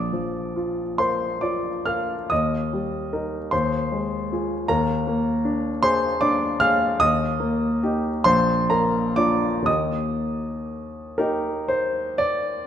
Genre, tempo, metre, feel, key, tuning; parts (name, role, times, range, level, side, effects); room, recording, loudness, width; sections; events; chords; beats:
classical, romantic character piece for solo piano; 39-54 BPM (dotted quarters); 6/8; rubato; Eb major; A4 = 439 Hz
warm baby grand piano; solo; 0.0-12.7 s; Bb1 to F6; -21 LUFS; equal
moderate scoring stage reverb, RT60 1.8 s; -20 LUFS; side -9 dB against mid
0.0-12.7 A section
0.0 Bb; 2.3 Eb; 3.5 Fm7/Eb; 4.7 Bb7/Eb; 7.0 Eb; 8.2 Bb; 9.7 Eb
0.98 | 2.31 3.52 | 4.69 5.83 | 7.00 8.25 | 9.67 11.20